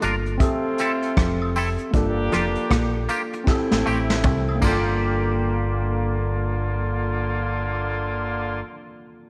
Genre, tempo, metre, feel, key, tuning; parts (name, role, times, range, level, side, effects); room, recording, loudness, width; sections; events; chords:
lovers rock reggae; 78 BPM; 4/4; swing 62% on 16ths; G dorian; A4 = 442 Hz
tine electric piano; accompaniment; 0.0-9.3 s; Bb3 to E5; -30 LUFS; equal
electric guitar with an envelope filter; riff; 0.0-4.5 s; F3 to C4; -32 LUFS; equal; subtle chorus
twangy electric guitar; stabs; 0.0-8.7 s; A3 to Bb4; -31 LUFS; equal; analog chorus
deep dub fingered electric bass; bass; 0.0-8.6 s; F1 to C2; -28 LUFS; equal
vintage brush drum kit; drums; 0.0-4.8 s; crash cymbal, hi-hat, kick drum, rim click, snare drum, toms; -26 LUFS; equal
tambourine and woodblock; percussion; 0.0-5.4 s; -41 LUFS; equal
clear horn section; second line; 0.4-8.6 s; D3 to G4; -32 LUFS; equal
moderate echo chamber reverb, RT60 2.1 s; -23 LUFS; mono
0.0-5.0 A section; 5.0-8.1 B section
drum fill 3.5-5.0
0.4 Fmaj7; 1.9 Gm7; 3.5 Am7; 4.6 Gm7